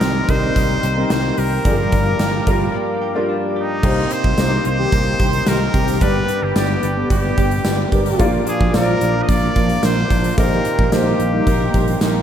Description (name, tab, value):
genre	1980s-style pop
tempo	110 BPM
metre	4/4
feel	straight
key	C minor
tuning	A4 = 440 Hz
part	trumpet with straight mute	melody	0.0-12.2 s	Eb4 to Eb5	-24 LUFS	equal	ping-pong delay
part	clear grand piano	accompaniment	0.0-12.2 s	G2 to D5	-22 LUFS	left 2 dB	lush chorus
part	brassy analog pad	sustained chords	0.0-12.2 s	Eb4 to D6	-27 LUFS	equal	chorus
part	direct-recorded clean electric guitar	riff	0.0-12.2 s	Eb3 to G4	-28 LUFS	right 5 dB	none
part	fretless electric bass	bass	0.0-12.2 s	G1 to C2	-21 LUFS	equal	none
part	gated 80s drum kit	drums	0.0-12.1 s	crash cymbal, hi-hat, kick drum, snare drum, tambourine	-20 LUFS	equal	none
part	mellow synth brass	stabs	4.8-12.1 s	D3 to Bb4	-25 LUFS	left 1 dB	chorus, ping-pong delay
part	warm symphonic violin section	second line	11.5-12.2 s	Eb4 to Bb4	-31 LUFS	equal	ping-pong delay
room	wet plate reverb, RT60 3.0 s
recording	dreamy mix soaked in reverb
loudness	-15 LUFS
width	side -9 dB against mid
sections	0.0-3.8 A section; 3.8-12.2 B section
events	break 2.7-3.8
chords	0.0 Cm7; 1.7 Gm7; 3.8 Cm7; 6.0 G; 8.2 Bb; 10.4 Eb6/Bb